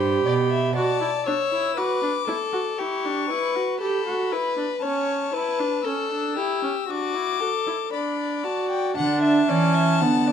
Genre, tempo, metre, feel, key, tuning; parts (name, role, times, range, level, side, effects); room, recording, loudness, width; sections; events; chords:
classical, baroque-style fugue for string quartet; 58 BPM; 4/4; straight; A4 = 441 Hz
rich violin; melody; 0.0-10.3 s; G5 to E6; -28 LUFS; left 12 dB
warm violin; second line; 0.0-10.3 s; F#4 to F#5; -26 LUFS; left 3 dB
rich viola; accompaniment; 0.0-10.3 s; B3 to G4; -26 LUFS; right 4 dB
warm cello; bass; 0.0-0.7, 9.0-10.3 s; G2 to E3; -22 LUFS; right 3 dB
light reverb; dark, warm production; -21 LUFS; side -8 dB against mid
0.0-9.0 A section; 9.0-10.3 B section
0.0 G; 0.8 D; 2.8 Em; 4.8 A/C#; 6.9 D